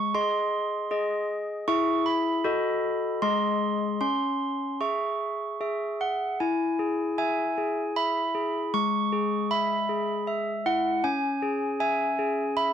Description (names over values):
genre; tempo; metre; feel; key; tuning
classical, lullaby for handbells; 78 BPM; 3/4; straight; C# minor, E major from 6.4 s; A4 = 440 Hz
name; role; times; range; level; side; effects
handbells; solo; 0.0-12.7 s; G#3 to C#6; -24 LUFS; equal; none
room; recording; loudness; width
little or no reverb; dry, close 1970s-style studio recording; -24 LUFS; side -9 dB against mid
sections
0.0-6.4 A section; 6.4-12.7 B section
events
none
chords
0.0 G#; 1.7 C#m/E; 2.4 D#dim/F#; 3.2 G#; 4.0 C#m; 6.4 E; 8.7 E/G#; 11.0 C#m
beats
0.15 0.92 | 1.68 2.44 3.22 | 4.01 4.80 5.60 | 6.40 7.19 7.96 | 8.74 9.51 10.28 | 11.04 11.80 12.57